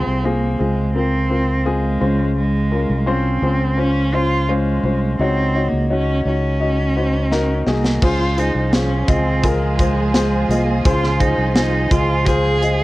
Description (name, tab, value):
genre	piano-driven pop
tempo	85 BPM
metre	4/4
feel	straight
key	unclear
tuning	A4 = 440 Hz
part	warm cello	melody	0.0-12.8 s	Ab3 to Ab4	-21 LUFS	right 2 dB	none
part	warm grand piano	accompaniment	0.0-12.8 s	C3 to Eb5	-21 LUFS	left 3 dB	cassette tape
part	fingered electric bass	bass	0.0-12.8 s	C2 to Db2	-20 LUFS	equal	none
part	modern studio drum kit	drums	7.3-12.8 s	crash cymbal, hi-hat, kick drum, snare drum	-20 LUFS	equal	cassette tape
part	warm studio string section	sustained chords	8.0-12.8 s	F3 to C5	-25 LUFS	right 2 dB	cassette tape
room	light reverb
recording	home recording on cassette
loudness	-15 LUFS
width	side -18 dB against mid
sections	0.0-8.0 A section; 8.0-12.8 B section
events	drum fill 7.3-8.0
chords	0.0 Fm; 2.0 Dbmaj7; 5.2 Ebm7/Db; 8.0 Fm